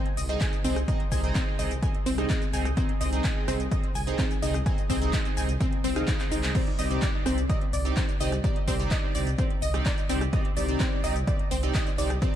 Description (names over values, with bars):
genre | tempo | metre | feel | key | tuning
progressive house | 127 BPM | 4/4 | straight | C minor | A4 = 438 Hz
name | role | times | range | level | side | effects
chorused polysynth | stabs | 0.0-12.4 s | C4 to F5 | -32 LUFS | right 2 dB | phaser, sidechain pumping, dub echo
house drum kit | drums | 0.1-12.3 s | crash cymbal, handclaps, hi-hat, rim click, shaker | -36 LUFS | left 1 dB | none
wide unison pluck | arpeggios | 0.2-12.3 s | C4 to Ab6 | -33 LUFS | left 1 dB | sidechain pumping, dub echo
dark detuned saw bass | bass | 0.2-12.2 s | C2 | -29 LUFS | equal | sidechain pumping
electronic kick drum | drums | 0.4-12.3 s | none | -27 LUFS | equal | overdrive
room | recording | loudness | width
light reverb, digital ambience | dark, warm production, lossy compression artefacts | -24 LUFS | side -11 dB against mid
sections
0.0-12.4 A section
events
drum fill 6.2-6.5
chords
0.0 Ab/C; 6.5 Cmadd9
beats
0.41 | 0.88 1.35 1.83 2.30 | 2.77 3.24 3.72 4.19 | 4.66 5.13 5.61 6.08 | 6.55 7.02 7.50 7.97 | 8.44 8.91 9.38 9.86 | 10.33 10.80 11.28 11.75 | 12.22